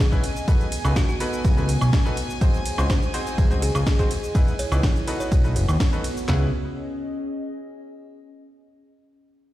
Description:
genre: piano house.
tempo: 124 BPM.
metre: 4/4.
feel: straight.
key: C# minor.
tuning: A4 = 440 Hz.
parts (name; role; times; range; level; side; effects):
buzzing kalimba; melody; 0.0-5.4 s; F#4 to C#5; -34 LUFS; equal; digital delay.
warm symphonic violin section; sustained chords; 0.0-6.3 s; G#5; -35 LUFS; equal; sidechain pumping.
house drum kit; drums; 0.0-6.3 s; cabasa, hi-hat, ride cymbal, snare drum, woodblock; -31 LUFS; right 1 dB; none.
warbly tape-like pad; texture; 0.0-8.2 s; B3 to G#5; -33 LUFS; right 1 dB; chorus, built-in reverb, sidechain pumping.
clear grand piano; riff; 0.1-6.5 s; B3 to B#4; -31 LUFS; left 1 dB; sidechain pumping, digital delay.
punchy analog drum machine; drums; 0.1-6.4 s; handclaps, kick drum, snare drum, toms; -21 LUFS; equal; none.
fat analog bass; bass; 0.8-6.5 s; F#1 to D#2; -21 LUFS; equal; sidechain pumping.
room: little or no reverb.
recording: played on a big sound system in a bare room, stone room reverb.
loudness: -20 LUFS.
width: side -15 dB against mid.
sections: 0.0-6.3 A section; 6.3-8.2 B section.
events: drop 0.0-6.3.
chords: 0.2 B7; 2.2 G#7; 4.1 Emaj7; 5.3 B7; 6.3 C#7(no3).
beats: | 0.48 0.96 1.45 1.93 | 2.41 2.90 3.38 3.87 | 4.35 4.83 5.32 5.80 | 6.29 6.77 7.25 7.74.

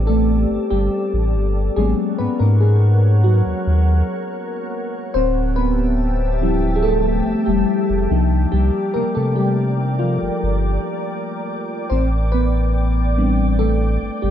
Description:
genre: R&B.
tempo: 71 BPM.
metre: 4/4.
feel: straight.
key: unclear.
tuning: A4 = 440 Hz.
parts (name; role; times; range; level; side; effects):
mellow FM electric piano; accompaniment; 0.0-14.3 s; F3 to C5; -20 LUFS; left 1 dB; chorus, phaser.
glassy FM pad; sustained chords; 0.0-14.3 s; G4 to D6; -27 LUFS; left 1 dB; ensemble chorus, built-in reverb.
saturated sub bass; bass; 0.0-14.3 s; D1 to C3; -17 LUFS; equal; none.
room: light reverb.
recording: dark, warm production.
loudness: -16 LUFS.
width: side -10 dB against mid.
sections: 0.0-14.3 A section.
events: FM electric piano solo 0.0-14.3.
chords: 0.0 Am11; 1.8 G#m11; 5.1 Dm11; 8.1 Cm11; 11.9 Am11.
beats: 0.08 0.92 | 1.77 2.61 3.46 4.30 | 5.15 5.99 6.84 7.68 | 8.53 9.37 10.22 11.06 | 11.91 12.76 13.60.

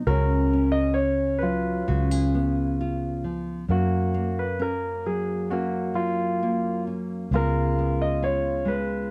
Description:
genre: acoustic folk-pop ballad.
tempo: 66 BPM.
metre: 4/4.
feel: straight.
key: F# major.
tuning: A4 = 435 Hz.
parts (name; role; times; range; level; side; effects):
clear concert grand piano; melody; 0.0-9.1 s; A#3 to D#5; -29 LUFS; equal; none.
nylon-string guitar; accompaniment; 0.0-9.1 s; F#2 to G#4; -30 LUFS; equal; none.
vintage muted fingered electric bass; bass; 0.0-9.1 s; C#2 to F#2; -29 LUFS; equal; none.
room: studio reverb.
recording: dry, close 1970s-style studio recording.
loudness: -25 LUFS.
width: mono.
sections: 0.0-3.7 A section; 3.7-9.1 A section.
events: none.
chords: 0.1 F#5/C#; 1.9 C#7; 3.7 F#maj7; 7.3 C#7.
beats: | 0.06 0.96 1.87 2.78 | 3.69 4.60 5.50 6.40 | 7.31 8.21.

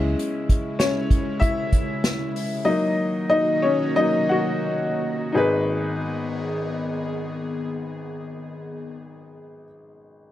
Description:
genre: piano-driven pop.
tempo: 84-99 BPM.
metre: 4/4.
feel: straight.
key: G# minor.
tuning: A4 = 440 Hz.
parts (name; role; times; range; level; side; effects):
clear upright piano; accompaniment; 0.0-10.3 s; G#1 to F#5; -23 LUFS; left 2 dB; none.
airy breathy pad; sustained chords; 0.1-9.0 s; C#3 to G#4; -30 LUFS; right 1 dB; chorus.
unplugged drum kit; drums; 0.2-2.5 s; hi-hat, kick drum, snare drum; -22 LUFS; equal; none.
room: light reverb.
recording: dark, warm production.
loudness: -21 LUFS.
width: side -13 dB against mid.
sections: 0.0-5.4 A section; 5.4-8.2 B section.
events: upright piano solo 0.0-5.4; slowing down 0.2-5.4.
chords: 0.0 C#m; 2.7 D#m; 5.4 G#m.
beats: | 0.20 0.80 1.42 2.04 | 2.67 3.31 3.97 4.65 | 5.35 6.06 6.78 7.49.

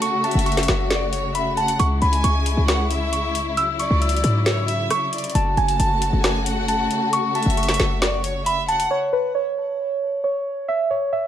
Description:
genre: hip hop, trap.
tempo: 135 BPM.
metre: 4/4.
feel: half-time.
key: unclear.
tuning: A4 = 443 Hz.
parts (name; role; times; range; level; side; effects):
muted felt-like synth keys; melody; 0.0-11.3 s; B4 to E6; -22 LUFS; right 1 dB; chorus, ping-pong delay.
warm symphonic string section; sustained chords; 0.0-8.9 s; C#3 to F#4; -26 LUFS; left 3 dB; none.
trap drum kit; drums; 0.0-8.9 s; hi-hat, rim click, snare drum; -24 LUFS; left 1 dB; vintage 12-bit sampler grit.
warm studio violin section; second line; 0.2-8.9 s; C#5 to A5; -28 LUFS; right 1 dB; ping-pong delay.
short 808-style bass; bass; 0.4-8.9 s; F#1 to G#2; -22 LUFS; equal; none.
room: light reverb, digital ambience.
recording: none.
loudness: -18 LUFS.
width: side -10 dB against mid.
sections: 0.0-8.9 A section; 8.9-11.3 B section.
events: none.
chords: 0.0 F#m; 1.8 C#m; 5.4 F#m; 8.9 N.C..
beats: | 0.02 0.46 0.91 1.35 | 1.79 2.24 2.68 3.13 | 3.57 4.02 4.46 4.91 | 5.35 5.79 6.24 6.68 | 7.13 7.57 8.02 8.46 | 8.91 9.35 9.79 10.24 | 10.68 11.13.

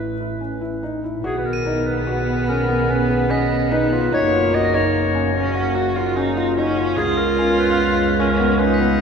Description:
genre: contemporary instrumental, chamber music in an uneven meter.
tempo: 147 BPM.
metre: 7/4.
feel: straight.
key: B lydian.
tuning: A4 = 440 Hz.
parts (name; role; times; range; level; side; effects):
clear clarinet; melody; 0.0-9.0 s; G#4 to D#5; -23 LUFS; left 1 dB; none.
felt-muted upright piano; arpeggios; 0.0-9.0 s; B3 to F#4; -23 LUFS; left 2 dB; none.
dark double bass; bass; 0.0-9.0 s; F#1 to C#2; -23 LUFS; right 3 dB; none.
rich viola; second line; 1.2-9.0 s; A#3 to F#4; -24 LUFS; right 2 dB; none.
mellow French horn section; sustained chords; 1.2-9.0 s; C#3 to G#4; -27 LUFS; left 4 dB; none.
crotales; texture; 1.5-9.0 s; G#6 to D#7; -31 LUFS; right 1 dB; none.
room: wet cathedral reverb, RT60 5.4 s.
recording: recorded in a church or concert hall.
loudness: -17 LUFS.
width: side -6 dB against mid.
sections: 0.0-1.2 A section; 1.2-9.0 B section.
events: none.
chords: 0.0 Aadd9; 1.2 B6; 4.1 F#; 7.0 C#7.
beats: 0.40 0.83 | 1.25 1.66 2.07 2.48 2.90 3.31 3.71 | 4.12 4.53 4.93 5.34 5.75 6.15 6.56 | 6.97 7.38 7.78 8.19 8.60.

